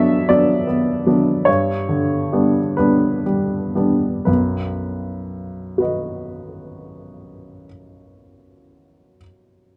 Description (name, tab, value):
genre	neoclassical minimalist piano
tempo	38-54 BPM (dotted quarters)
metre	6/8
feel	rubato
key	B minor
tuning	A4 = 440 Hz
part	clear upright piano	solo	0.0-9.8 s	B1 to E5	-19 LUFS	equal	none
room	moderate studio ambience, RT60 0.5 s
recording	dark, warm production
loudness	-19 LUFS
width	mono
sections	0.0-4.3 A section; 4.3-9.8 B section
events	slowing down 0.0-4.3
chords	0.0 Bm; 1.5 G; 4.3 B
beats	0.29 | 1.47 2.78 | 4.27 5.78 | 7.26 8.74